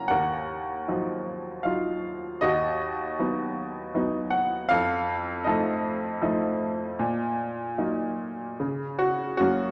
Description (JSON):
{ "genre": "classical, lyrical solo piano", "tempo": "78 BPM", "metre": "3/4", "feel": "rubato", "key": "Eb minor", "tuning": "A4 = 440 Hz", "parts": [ { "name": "clear upright piano", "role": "solo", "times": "0.0-9.7 s", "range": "Eb2 to A#5", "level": "-28 LUFS", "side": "equal", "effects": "none" } ], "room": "wet recital hall reverb, RT60 1.4 s", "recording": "none", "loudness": "-28 LUFS", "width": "mono", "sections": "0.1-9.4 A section", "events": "none", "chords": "0.1 Ebmadd9; 2.4 B/D#; 4.7 F7; 7.0 Ebm/Bb; 8.6 N.C." }